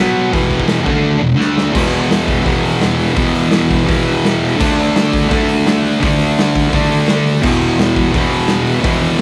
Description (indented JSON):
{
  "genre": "garage rock duo or trio",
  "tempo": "169 BPM",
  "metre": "4/4",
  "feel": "straight",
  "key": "unclear",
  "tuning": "A4 = 440 Hz",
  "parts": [
    { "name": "thick fuzz guitar", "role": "riff", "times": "0.0-9.2 s", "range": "E2 to D4", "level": "-15 LUFS", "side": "equal", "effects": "distortion, cassette tape" },
    { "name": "raw garage drum kit", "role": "drums", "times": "0.3-9.2 s", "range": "crash cymbal, hi-hat, kick drum, snare drum", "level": "-20 LUFS", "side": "equal", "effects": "cassette tape" }
  ],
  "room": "moderate studio ambience, RT60 0.5 s",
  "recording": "home recording on cassette",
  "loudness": "-14 LUFS",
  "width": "mono",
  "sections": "0.0-1.7 A section; 1.7-9.2 B section",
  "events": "drum fill 1.4-1.7",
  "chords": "0.3 E5; 0.9 D5; 1.2 E5; 1.4 D5; 1.7 E5; 4.6 D5; 7.4 E5"
}